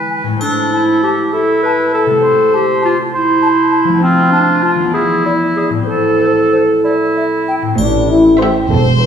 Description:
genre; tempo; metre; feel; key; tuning
cinematic, playful, whimsical film cue; 66 BPM (dotted quarters); 6/8; straight; A minor; A4 = 437 Hz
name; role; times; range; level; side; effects
warm oboe; second line; 0.0-7.6 s; E4 to C5; -17 LUFS; right 2 dB; none
concert harp; arpeggios; 0.0-9.1 s; A2 to D5; -18 LUFS; left 2 dB; none
mellow hollow silver concert flute; second line; 0.1-7.6 s; C5 to A5; -22 LUFS; left 2 dB; none
clear clarinet; second line; 0.4-7.4 s; C4 to B4; -14 LUFS; equal; none
triangle; percussion; 0.4-1.6, 7.8-9.0 s; none; -30 LUFS; left 1 dB; none
warm French horn section; sustained chords; 7.8-9.1 s; D4 to B4; -12 LUFS; left 2 dB; none
dark tuba; bass; 7.8-9.1 s; E1 to A1; -17 LUFS; right 2 dB; none
rich chamber cello section; bass; 7.8-9.1 s; E2 to A2; -20 LUFS; right 2 dB; none
warm studio double bass section; bass; 7.8-9.1 s; E1 to A1; -18 LUFS; right 4 dB; none
clear chamber violin section; melody; 8.4-8.6 s; E5; -25 LUFS; equal; none
warm studio viola section; accompaniment; 8.4-8.6 s; A3 to C5; -20 LUFS; left 1 dB; none
rich chamber violin section; second line; 8.7-9.1 s; C5; -17 LUFS; left 5 dB; none
room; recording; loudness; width
wet recital hall reverb, RT60 1.4 s; recorded in a church or concert hall; -10 LUFS; side -8 dB against mid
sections
0.0-7.8 A section; 7.8-9.1 A section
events
none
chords
0.4 Am; 2.2 Am/C; 4.0 F; 4.9 E5; 5.9 Am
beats
| 0.41 1.33 | 2.23 3.13 | 4.03 4.93 | 5.88 6.83 | 7.79 8.71

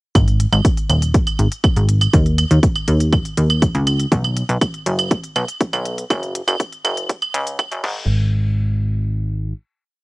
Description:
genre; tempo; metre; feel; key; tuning
melodic techno; 121 BPM; 4/4; straight; G# minor; A4 = 442 Hz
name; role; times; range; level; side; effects
plucky analog bass; bass; 0.2-9.5 s; D#1 to D#2; -17 LUFS; equal; sidechain pumping
electronic kick drum; drums; 0.2-7.9 s; none; -17 LUFS; equal; overdrive, cassette tape
techno drum kit; drums; 0.2-7.9 s; claves, crash cymbal, hi-hat; -23 LUFS; right 3 dB; overdrive, cassette tape
room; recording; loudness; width
digital ambience; home recording on cassette, high-pass filter; -16 LUFS; side -22 dB against mid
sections
0.2-8.1 build; 8.1-10.0 final hit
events
build-up 0.2-8.1; filter sweep 0.2-8.1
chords
none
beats
| 0.15 0.65 1.14 1.64 | 2.14 2.63 3.13 3.62 | 4.12 4.62 5.11 5.61 | 6.10 6.60 7.09 7.59 | 8.09 8.58 9.08

